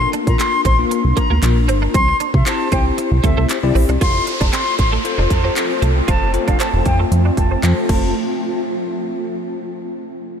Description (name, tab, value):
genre	dance-pop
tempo	116 BPM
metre	4/4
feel	straight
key	F major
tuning	A4 = 445 Hz
part	silver concert flute	melody	0.0-8.1 s	E5 to C6	-22 LUFS	left 1 dB	sidechain pumping, low-pass filter, ping-pong delay
part	bell-like tine electric piano	accompaniment	0.0-8.1 s	Bb3 to D5	-23 LUFS	left 6 dB	ensemble chorus, sidechain pumping, low-pass filter
part	twelve-string electric guitar	riff	0.0-8.0 s	A3 to F4	-27 LUFS	right 7 dB	ensemble chorus, low-pass filter
part	plucky analog bass	bass	0.0-8.1 s	F1 to C3	-17 LUFS	equal	sidechain pumping
part	house drum kit	drums	0.1-8.0 s	crash cymbal, handclaps, hi-hat, kick drum	-20 LUFS	equal	none
part	granular cloud pad	sustained chords	4.8-8.1 s	A3 to F4	-23 LUFS	equal	built-in reverb, sidechain pumping, low-pass filter
part	downlifter	sound effects	4.0-8.2 s	none	-28 LUFS	equal	none
room	moderate huge ambient reverb, RT60 6.5 s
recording	dreamy mix soaked in reverb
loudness	-14 LUFS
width	side -8 dB against mid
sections	0.0-4.0 A section; 4.0-8.2 B section; 8.2-10.2 C section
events	drop 0.0-4.0; filter sweep 4.0-8.2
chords	0.0 Bb; 1.9 C; 4.0 F; 8.2 N.C.